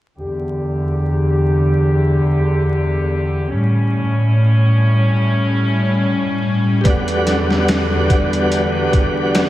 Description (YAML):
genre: trip hop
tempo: 72 BPM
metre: 4/4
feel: swing 55% on 16ths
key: E dorian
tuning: A4 = 440 Hz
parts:
  - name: bright chamber string section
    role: sustained chords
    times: 0.2-9.5 s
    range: E2 to G4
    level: -15 LUFS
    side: equal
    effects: low-pass filter
  - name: tonewheel organ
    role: accompaniment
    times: 6.8-9.5 s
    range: G3 to F#4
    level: -18 LUFS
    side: equal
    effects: fast rotary speaker, tremolo, tape echo
  - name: trip hop sampler-style drum kit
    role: drums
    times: 6.8-9.5 s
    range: hi-hat, kick drum, snare drum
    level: -18 LUFS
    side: equal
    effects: overdrive
room: wet lush hall reverb, RT60 2.9 s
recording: dreamy mix soaked in reverb, vinyl crackle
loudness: -14 LUFS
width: side -15 dB against mid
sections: 0.2-9.5 A section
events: filter sweep on string section 0.2-9.5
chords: 0.2 Em7; 3.5 A7; 6.9 Em7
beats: | 0.18 1.02 1.85 2.69 | 3.52 4.35 5.18 6.02 | 6.85 7.68 8.52 9.35